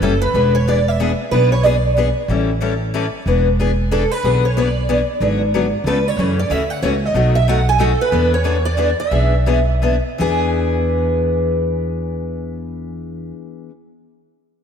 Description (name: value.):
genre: acoustic string swing (jazz manouche).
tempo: 157-185 BPM.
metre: 3/4.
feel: swing 60% on 8ths.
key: E mixolydian.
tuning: A4 = 440 Hz.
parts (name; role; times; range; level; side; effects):
picked steel-string acoustic guitar; melody; 0.0-13.3 s; A4 to G#5; -20 LUFS; right 4 dB; ensemble chorus, ping-pong delay.
picked steel-string acoustic guitar; accompaniment; 0.0-13.7 s; B2 to A4; -20 LUFS; left 5 dB; wide subtle chorus.
upright bass; bass; 0.0-13.3 s; E1 to F#2; -18 LUFS; right 1 dB; none.
room: moderate lush hall reverb, RT60 2.3 s.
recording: dreamy mix soaked in reverb.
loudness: -15 LUFS.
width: side -7 dB against mid.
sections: 0.0-10.2 A section; 10.2-12.5 B section.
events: slowing down 8.1-10.2.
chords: 0.3 E7; 2.3 A7; 3.3 E7; 5.2 G#m7b5; 5.9 C#aug7; 6.2 F#m7; 7.2 B7; 8.1 E7.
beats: 0.02 | 0.34 0.67 0.99 | 1.32 1.64 1.97 | 2.29 2.62 2.94 | 3.27 3.59 3.91 | 4.24 4.56 4.89 | 5.21 5.54 5.86 | 6.18 6.51 6.83 | 7.16 7.48 7.81 | 8.13 8.46 8.79 | 9.12 9.47 9.83 | 10.20 10.58 10.96 | 11.35 11.73 12.11.